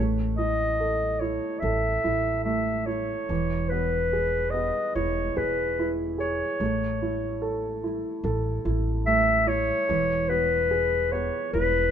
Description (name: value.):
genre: folk.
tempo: 73 BPM.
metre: 4/4.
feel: straight.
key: unclear.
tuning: A4 = 440 Hz.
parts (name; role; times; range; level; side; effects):
warm clarinet; melody; 0.0-11.9 s; B4 to E5; -25 LUFS; left 1 dB; none.
warm upright piano; accompaniment; 0.0-11.9 s; E3 to A4; -29 LUFS; right 2 dB; none.
upright bass; bass; 0.0-11.9 s; E1 to A1; -30 LUFS; equal; none.
room: light reverb.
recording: minimal, uncompressed stereo recording.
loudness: -23 LUFS.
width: side -8 dB against mid.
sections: 0.0-11.9 A section.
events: none.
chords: 0.0 A5; 3.3 E; 6.6 A; 9.9 E.